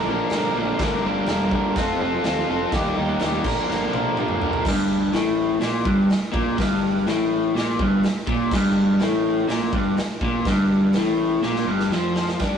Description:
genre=garage rock duo or trio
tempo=124 BPM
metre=4/4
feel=straight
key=G minor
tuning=A4 = 440 Hz
part: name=overdriven electric guitar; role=riff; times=0.0-12.6 s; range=G2 to Bb4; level=-20 LUFS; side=equal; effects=none
part: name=fuzz picked electric bass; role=bass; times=0.1-12.6 s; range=E1 to G2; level=-33 LUFS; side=right 1 dB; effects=overdrive
part: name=raw garage drum kit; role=drums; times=0.3-12.5 s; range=crash cymbal, hi-hat, kick drum, ride cymbal, snare drum, toms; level=-27 LUFS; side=right 1 dB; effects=vintage 12-bit sampler grit
room=wet stone room reverb, RT60 1.2 s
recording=rough rehearsal-room recording, tube saturation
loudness=-19 LUFS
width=side -7 dB against mid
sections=0.0-4.7 A section; 4.7-12.4 B section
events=drum fill 3.7-4.7, 11.4-12.4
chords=0.0 Bb; 0.8 Gm; 1.8 F; 2.7 Eb; 3.4 Bb; 4.7 Gm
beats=0.32 | 0.80 1.28 1.76 2.24 | 2.72 3.21 3.69 4.17 | 4.65 5.14 5.62 6.10 | 6.59 7.07 7.55 8.04 | 8.52 9.00 9.49 9.97 | 10.46 10.94 11.43 11.91 | 12.40

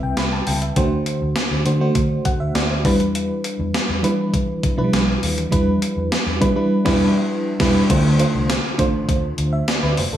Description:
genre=1980s-style pop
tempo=101 BPM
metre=4/4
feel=straight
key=unclear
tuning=A4 = 443 Hz
part: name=FM electric piano with tremolo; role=accompaniment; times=0.0-10.2 s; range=C3 to B5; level=-19 LUFS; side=right 1 dB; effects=none
part: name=vintage muted fingered electric bass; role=bass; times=0.0-10.2 s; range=E1 to E3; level=-23 LUFS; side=equal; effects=none
part: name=gated 80s digital drum machine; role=drums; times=0.2-10.1 s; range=crash cymbal, hi-hat, kick drum, snare drum, tambourine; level=-22 LUFS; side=equal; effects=gated reverb, gated reverb snare, overdrive
room=light reverb, digital ambience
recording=studio reverb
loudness=-17 LUFS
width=side -11 dB against mid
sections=0.0-7.9 A section; 7.9-10.2 B section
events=band accent 6.7-7.9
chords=0.0 Cmaj7; 0.8 D7; 2.9 Em7; 7.9 Dm7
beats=0.18 | 0.77 1.36 1.96 2.55 | 3.15 3.74 4.34 4.93 | 5.52 6.12 6.71 7.31 | 7.90 8.49 9.09 9.68

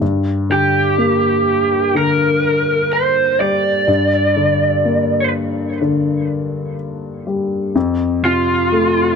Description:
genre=pop ballad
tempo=62 BPM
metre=4/4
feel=straight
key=G minor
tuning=A4 = 440 Hz
part: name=warm baby grand piano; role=accompaniment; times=0.0-9.2 s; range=F2 to Bb3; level=-17 LUFS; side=left 3 dB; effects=none
part: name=lead guitar through a small cranked amp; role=melody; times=0.5-9.2 s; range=F4 to D5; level=-15 LUFS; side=right 2 dB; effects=overdrive
room=light reverb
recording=dark, warm production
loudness=-14 LUFS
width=side -6 dB against mid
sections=0.0-9.2 A section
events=none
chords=0.0 Gm; 7.8 F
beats=| 0.01 0.98 1.95 2.92 | 3.89 4.85 5.82 6.79 | 7.76 8.72

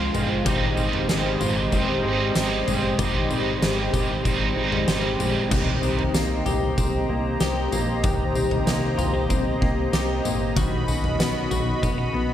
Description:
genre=dream pop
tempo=95 BPM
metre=4/4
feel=straight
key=unclear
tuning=A4 = 440 Hz
part: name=overdriven electric guitar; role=accompaniment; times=0.0-6.0 s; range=Ab2 to F4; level=-27 LUFS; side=right 5 dB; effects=harmonic tremolo, analog chorus
part: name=warm analog pad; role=sustained chords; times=0.0-12.3 s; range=F4 to B5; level=-27 LUFS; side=equal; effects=chorus
part: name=clean electric guitar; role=arpeggios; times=0.0-12.3 s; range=Eb3 to G4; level=-28 LUFS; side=left 3 dB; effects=wide subtle chorus, digital delay
part: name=chorused synth bass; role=bass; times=0.0-12.3 s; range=G1 to Db2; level=-28 LUFS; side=equal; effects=none
part: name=oversized low-tuned drum kit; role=drums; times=0.1-12.0 s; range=crash cymbal, kick drum, snare drum, tambourine, toms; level=-26 LUFS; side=equal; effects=none
room=moderate plate reverb, RT60 2.6 s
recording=none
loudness=-20 LUFS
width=side -11 dB against mid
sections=0.0-5.5 A section; 5.5-12.3 A section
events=none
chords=0.5 Abmaj7; 5.5 Cm7; 10.6 Badd9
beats=| 0.46 1.09 1.72 2.36 | 2.99 3.62 4.25 4.88 | 5.51 6.14 6.78 7.41 | 8.04 8.67 9.30 9.94 | 10.57 11.20 11.83

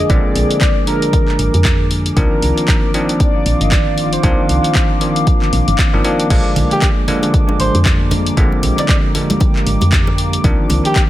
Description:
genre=deep house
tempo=116 BPM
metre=4/4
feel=swing 58% on 16ths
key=unclear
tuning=A4 = 441 Hz
part: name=mellow horn-like synth lead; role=melody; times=0.0-5.8 s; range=Bb4 to Eb5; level=-23 LUFS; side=equal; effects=wide subtle chorus, tape echo
part: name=warm analog pad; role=sustained chords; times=0.0-11.1 s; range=Eb3 to D6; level=-27 LUFS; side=equal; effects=chorus, sidechain pumping
part: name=bell-like tine electric piano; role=stabs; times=0.0-11.1 s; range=D3 to D4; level=-18 LUFS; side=equal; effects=sidechain pumping, tape echo
part: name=woody FM bass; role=bass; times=0.0-10.8 s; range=G1 to F2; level=-17 LUFS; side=equal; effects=sidechain pumping
part: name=warbly tape-like pad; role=texture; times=0.0-11.1 s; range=Eb3 to D6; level=-24 LUFS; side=equal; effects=chorus, built-in reverb, sidechain pumping
part: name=electronic kick drum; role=drums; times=0.1-11.1 s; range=none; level=-15 LUFS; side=equal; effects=overdrive
part: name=punchy analog drum machine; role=drums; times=0.1-11.1 s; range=crash cymbal, handclaps, hi-hat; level=-21 LUFS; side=left 1 dB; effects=none
part: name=congas and bongos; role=percussion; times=6.6-10.8 s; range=none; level=-24 LUFS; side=right 1 dB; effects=sidechain pumping on perc
part: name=trumpet with bucket mute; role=melody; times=6.7-11.0 s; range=G4 to D5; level=-21 LUFS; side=right 1 dB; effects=tape echo
room=digital ambience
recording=none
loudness=-12 LUFS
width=side -14 dB against mid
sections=0.0-11.1 A section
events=none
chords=0.0 Bb7; 2.2 Cm11; 6.3 Bb7; 10.4 Cm11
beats=| 0.10 0.61 1.13 1.65 | 2.17 2.68 3.20 3.72 | 4.24 4.75 5.27 5.79 | 6.30 6.82 7.34 7.86 | 8.37 8.89 9.41 9.92 | 10.44 10.96

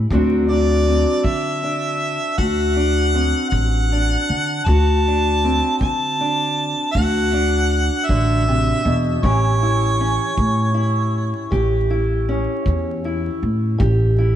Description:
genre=acoustic country blues, solo or duo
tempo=53 BPM (dotted quarters)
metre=12/8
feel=straight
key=unclear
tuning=A4 = 440 Hz
part: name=fingerpicked steel-string acoustic guitar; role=accompaniment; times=0.0-14.4 s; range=A2 to G4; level=-22 LUFS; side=equal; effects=none
part: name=upright bass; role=bass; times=0.0-14.4 s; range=A1 to D3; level=-19 LUFS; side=equal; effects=none
part: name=kick drum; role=drums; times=0.1-14.0 s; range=none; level=-22 LUFS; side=equal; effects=none
part: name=clear harmonica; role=melody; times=0.5-11.5 s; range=C#5 to A5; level=-22 LUFS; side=right 1 dB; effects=ping-pong delay
room=moderate lush hall reverb, RT60 2.6 s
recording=dreamy mix soaked in reverb, vinyl crackle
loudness=-16 LUFS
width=side -10 dB against mid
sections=0.0-14.4 A section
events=none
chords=0.1 D7; 9.2 A7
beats=| 0.11 1.25 2.38 3.52 | 4.66 5.80 6.95 8.09 | 9.23 10.37 11.51 12.65 | 13.80

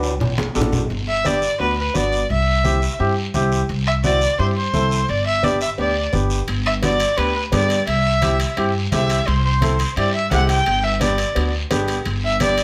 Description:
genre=latin, cumbia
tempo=172 BPM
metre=4/4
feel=straight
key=G major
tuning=A4 = 440 Hz
part: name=warm upright piano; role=accompaniment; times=0.0-12.5 s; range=B3 to B4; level=-26 LUFS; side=equal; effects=none
part: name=upright bass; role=bass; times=0.0-12.6 s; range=G1 to G2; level=-24 LUFS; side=equal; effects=none
part: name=guiro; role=percussion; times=0.0-12.6 s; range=none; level=-34 LUFS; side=equal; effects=none
part: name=timbales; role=percussion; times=0.0-0.8, 6.5-12.6 s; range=none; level=-32 LUFS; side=equal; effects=none
part: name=congas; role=percussion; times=0.2-12.6 s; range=none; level=-28 LUFS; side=equal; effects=none
part: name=rich erhu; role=melody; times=1.1-12.6 s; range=B4 to G5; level=-22 LUFS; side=equal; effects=none
room=light reverb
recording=none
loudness=-19 LUFS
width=mono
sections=0.9-12.6 A section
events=drum fill 0.0-0.9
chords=0.0 D; 0.9 G; 2.3 C; 5.1 G; 7.9 C; 10.7 G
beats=0.21 0.56 | 0.90 1.25 1.60 1.95 | 2.30 2.65 3.00 3.34 | 3.69 4.04 4.39 4.74 | 5.09 5.44 5.78 6.13 | 6.48 6.83 7.18 7.53 | 7.88 8.22 8.57 8.92 | 9.27 9.62 9.97 10.31 | 10.66 11.01 11.36 11.71 | 12.05 12.40

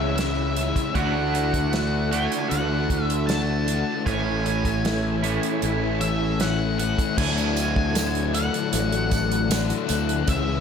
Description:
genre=rock, shoegaze and dream pop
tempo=77 BPM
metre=4/4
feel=straight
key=D lydian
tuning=A4 = 440 Hz
part: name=octave-fuzz lead guitar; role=melody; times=0.0-10.6 s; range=E5 to A5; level=-29 LUFS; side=left 1 dB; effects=distortion, slapback echo
part: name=string machine, cellos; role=sustained chords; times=0.0-10.6 s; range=E4 to G#5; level=-32 LUFS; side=equal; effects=ensemble chorus
part: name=crunchy overdriven guitar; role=riff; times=0.0-10.6 s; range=A2 to F#4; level=-27 LUFS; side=left 13 dB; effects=lush chorus
part: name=crunchy overdriven guitar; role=riff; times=0.0-7.2 s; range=A2 to F#4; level=-28 LUFS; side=right 12 dB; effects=reverse reverb
part: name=growling fingered electric bass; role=bass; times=0.0-10.6 s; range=A1 to D2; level=-26 LUFS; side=equal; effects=overdrive
part: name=loose indie drum kit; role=drums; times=0.2-10.5 s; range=crash cymbal, hi-hat, kick drum, snare drum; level=-28 LUFS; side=right 1 dB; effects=none
part: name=tambourine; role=percussion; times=7.2-10.4 s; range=none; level=-36 LUFS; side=right 12 dB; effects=none
room=studio ambience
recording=none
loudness=-21 LUFS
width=side -7 dB against mid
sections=0.0-7.2 A section; 7.2-10.6 B section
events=none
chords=0.0 C#m; 1.0 Dadd9; 4.1 Amaj7; 7.2 Dadd9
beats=0.18 | 0.96 1.74 2.51 3.29 | 4.07 4.84 5.62 6.40 | 7.17 7.95 8.73 9.51 | 10.28

